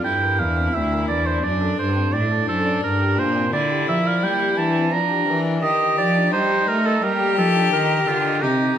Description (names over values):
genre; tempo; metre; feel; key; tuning
classical, baroque-style sonata movement with continuo; 86 BPM; 4/4; straight; unclear; A4 = 440 Hz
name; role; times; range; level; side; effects
rich violin; melody; 0.0-8.8 s; D4 to G4; -25 LUFS; left 7 dB; none
warm oboe; second line; 0.0-8.8 s; F4 to Bb5; -21 LUFS; right 4 dB; none
pipe organ, flutes; accompaniment; 0.0-8.8 s; D2 to Eb5; -25 LUFS; left 2 dB; none
clear cello; bass; 0.0-8.8 s; D2 to A3; -23 LUFS; right 1 dB; none
room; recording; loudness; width
wet recital hall reverb, RT60 1.7 s; none; -17 LUFS; side -9 dB against mid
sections
0.0-8.8 A section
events
none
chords
0.0 Gm; 1.4 D7/F#; 2.8 Gm; 5.6 Eb